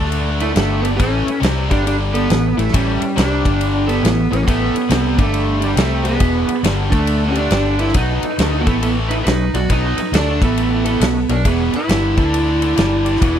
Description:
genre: blues rock power trio and southern rock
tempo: 138 BPM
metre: 4/4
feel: swing 64% on 8ths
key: unclear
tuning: A4 = 439 Hz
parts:
  - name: overdriven tonewheel organ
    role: sustained chords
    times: 0.0-13.4 s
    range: E3 to D5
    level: -30 LUFS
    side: right 5 dB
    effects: chorus vibrato, wide subtle chorus
  - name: tight distorted guitar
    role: riff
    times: 0.0-13.4 s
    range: E2 to D4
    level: -22 LUFS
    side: left 2 dB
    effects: distortion
  - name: vintage muted fingered electric bass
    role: bass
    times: 0.0-13.4 s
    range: E1 to D2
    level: -20 LUFS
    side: equal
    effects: none
  - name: huge arena drum kit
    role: drums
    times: 0.1-13.3 s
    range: kick drum, ride cymbal, snare drum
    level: -20 LUFS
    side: equal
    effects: none
  - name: overdriven slide guitar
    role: melody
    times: 0.4-13.4 s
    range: G3 to F#4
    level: -19 LUFS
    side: right 1 dB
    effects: none
  - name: lightly driven lead guitar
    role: second line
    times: 0.4-13.4 s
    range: C4 to D5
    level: -27 LUFS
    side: right 6 dB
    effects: none
room: little or no reverb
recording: dry, close 1970s-style studio recording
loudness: -14 LUFS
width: side -9 dB against mid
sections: 0.0-13.4 A section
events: none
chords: 0.0 D5; 0.6 G5; 1.0 A7; 1.7 G5; 2.3 A7; 3.4 G5; 4.0 A7; 5.1 G5; 5.8 C5; 6.2 E7; 6.9 D5; 7.5 G5; 8.0 B7; 8.6 A5; 9.3 B7; 10.4 A5; 11.0 B7; 11.5 E7; 12.1 D5; 12.8 G5

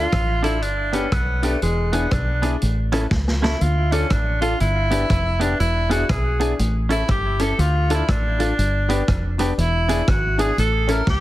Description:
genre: ska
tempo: 121 BPM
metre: 4/4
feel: swing 62% on 8ths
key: D harmonic minor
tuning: A4 = 440 Hz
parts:
  - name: clear tenor saxophone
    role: melody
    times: 0.0-11.2 s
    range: G#3 to Bb4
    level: -24 LUFS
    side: equal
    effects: tape echo
  - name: semi-hollow electric guitar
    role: accompaniment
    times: 0.0-11.0 s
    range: B3 to A4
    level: -26 LUFS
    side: right 4 dB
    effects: none
  - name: clear upright piano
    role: stabs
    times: 0.0-11.0 s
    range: C#4 to B4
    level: -27 LUFS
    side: left 5 dB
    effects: none
  - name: deep dub fingered electric bass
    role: bass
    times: 0.0-11.2 s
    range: E1 to D2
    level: -21 LUFS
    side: equal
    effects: none
  - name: vintage drum kit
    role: drums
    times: 0.1-11.2 s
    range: hi-hat, kick drum, rim click, snare drum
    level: -25 LUFS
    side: equal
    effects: none
room: little or no reverb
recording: heavily compressed radio sound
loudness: -18 LUFS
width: side -15 dB against mid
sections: 0.0-11.2 A section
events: tenor saxophone solo 0.0-11.2; drum fill 3.1-3.6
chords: 0.0 Dm; 0.6 G; 1.6 E7; 2.6 A; 3.6 Dm; 4.6 G; 5.6 E7; 6.6 A; 7.6 Dm; 8.6 G; 9.6 E7; 10.6 A

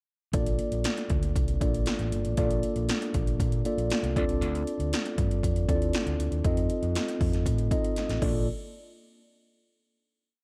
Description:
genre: polished 1980s jazz-funk pop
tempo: 118 BPM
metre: 4/4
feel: straight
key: Bb major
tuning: A4 = 439 Hz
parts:
  - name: mellow tine electric piano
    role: accompaniment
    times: 0.3-8.5 s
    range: Bb3 to Eb5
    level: -33 LUFS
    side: equal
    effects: subtle chorus
  - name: overdriven fingered electric bass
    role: bass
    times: 0.3-8.5 s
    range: G1 to Bb2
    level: -32 LUFS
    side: equal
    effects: none
  - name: 80s electronic pad drums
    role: drums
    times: 0.3-8.3 s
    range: crash cymbal, hi-hat, kick drum, snare drum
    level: -32 LUFS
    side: equal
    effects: none
room: digital ambience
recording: dark, warm production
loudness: -28 LUFS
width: mono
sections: 0.3-8.5 verse; 8.5-10.4 final hit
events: drum fill 8.0-8.5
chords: 0.3 Bbmaj7; 4.2 Dm7; 6.4 F7; 8.2 Bbmaj7; 8.5 N.C.

